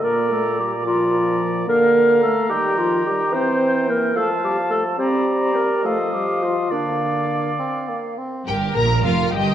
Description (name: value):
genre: quick classical-period movement for symphony orchestra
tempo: 72 BPM (dotted quarters)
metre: 6/8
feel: straight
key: Bb major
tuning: A4 = 441 Hz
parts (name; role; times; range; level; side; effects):
- mellow clarinet; second line; 0.0-7.6 s; D4 to C5; -20 LUFS; equal; none
- mellow concert flute; second line; 0.0-8.2 s; F5 to Bb5; -28 LUFS; left 1 dB; none
- warm oboe; second line; 0.0-8.2 s; D5 to G5; -27 LUFS; right 1 dB; none
- mellow bassoon; accompaniment; 0.0-8.5 s; Bb2 to C4; -25 LUFS; right 1 dB; none
- mellow French horn section; sustained chords; 0.0-7.6 s; D3 to C4; -24 LUFS; equal; none
- rich studio violin section; melody; 8.5-9.5 s; F5 to Bb5; -24 LUFS; left 2 dB; none
- clear studio violin section; second line; 8.5-9.5 s; F4 to Bb4; -23 LUFS; equal; none
- bright studio viola section; accompaniment; 8.5-9.5 s; Bb4 to Eb5; -26 LUFS; right 5 dB; none
- clear studio double bass section; bass; 8.5-9.5 s; F1 to Bb1; -23 LUFS; right 2 dB; none
- rich studio cello section; bass; 8.5-9.5 s; F2 to Bb2; -22 LUFS; right 2 dB; none
room: wet concert hall reverb, RT60 1.7 s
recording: worn, warbling old tape, cassette tape, warbly pitch drift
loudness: -17 LUFS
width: side -10 dB against mid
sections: 0.0-8.5 A section; 8.5-9.5 B section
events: none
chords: 0.0 Bb; 1.7 Bb/D; 2.5 Eb; 3.3 Edim; 4.2 F; 5.0 Gm; 5.8 F9; 6.7 Bb/D; 8.5 Fsus24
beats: | 0.02 0.85 | 1.68 2.51 | 3.33 4.16 | 4.99 5.85 | 6.72 7.60 | 8.48 9.32